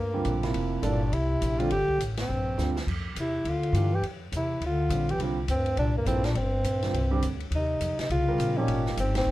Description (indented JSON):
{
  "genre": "modal jazz",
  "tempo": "206 BPM",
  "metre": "4/4",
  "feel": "swing 62% on 8ths",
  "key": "C mixolydian",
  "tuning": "A4 = 440 Hz",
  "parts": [
    { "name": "breathy tenor saxophone", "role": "melody", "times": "0.0-9.3 s", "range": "Bb3 to G4", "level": "-29 LUFS", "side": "equal", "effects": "none" },
    { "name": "breathy bass clarinet", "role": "second line", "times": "0.0-9.3 s", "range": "G2 to E3", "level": "-31 LUFS", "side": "left 1 dB", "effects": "none" },
    { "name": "upright bass", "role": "bass", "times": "0.0-9.3 s", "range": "F1 to G2", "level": "-29 LUFS", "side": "equal", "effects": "none" },
    { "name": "warm grand piano", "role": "accompaniment", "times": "0.1-9.0 s", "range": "C3 to Bb4", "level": "-32 LUFS", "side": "right 4 dB", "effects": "none" },
    { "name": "open jazz drum kit", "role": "drums", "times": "0.2-9.2 s", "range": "crash cymbal, hi-hat, kick drum, ride cymbal, snare drum", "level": "-38 LUFS", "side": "left 1 dB", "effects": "none" }
  ],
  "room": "little or no reverb",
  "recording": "dark, warm production",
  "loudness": "-25 LUFS",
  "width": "side -16 dB against mid",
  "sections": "0.0-7.5 A section; 7.5-9.3 B section",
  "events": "band accent 2.1, 9.1; drum fill 2.6",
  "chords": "0.0 C9sus4; 7.5 Eb13sus4"
}